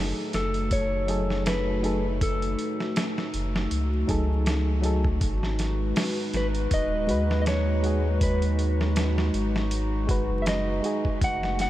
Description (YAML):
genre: trip hop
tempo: 80 BPM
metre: 4/4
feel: swing 56% on 16ths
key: unclear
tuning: A4 = 441 Hz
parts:
  - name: reed electric piano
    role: accompaniment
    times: 0.0-11.1 s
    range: F#3 to B4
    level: -33 LUFS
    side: equal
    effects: harmonic tremolo, tape echo
  - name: dark analog pad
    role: sustained chords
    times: 0.0-11.7 s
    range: G#3 to B4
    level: -30 LUFS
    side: equal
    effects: chorus
  - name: warm sub bass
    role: bass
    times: 0.0-11.7 s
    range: D#1 to D#2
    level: -27 LUFS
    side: equal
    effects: none
  - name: mellow electric guitar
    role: melody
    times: 0.3-11.7 s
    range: A4 to F#5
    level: -31 LUFS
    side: left 1 dB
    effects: vintage 12-bit sampler grit, tape echo
  - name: dusty soul sampler-style drum kit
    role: drums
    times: 0.3-11.7 s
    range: hi-hat, kick drum, snare drum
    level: -30 LUFS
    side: equal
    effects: vintage 12-bit sampler grit, small room ambience
room: moderate huge ambient reverb, RT60 9.5 s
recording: dreamy mix soaked in reverb, vinyl crackle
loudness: -23 LUFS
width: side -14 dB against mid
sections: 0.0-11.7 A section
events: none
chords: 0.0 F#m69; 5.2 G#m7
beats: 0.71 1.46 | 2.21 2.96 3.71 4.46 | 5.21 5.96 6.71 7.46 | 8.21 8.96 9.71 10.46 | 11.21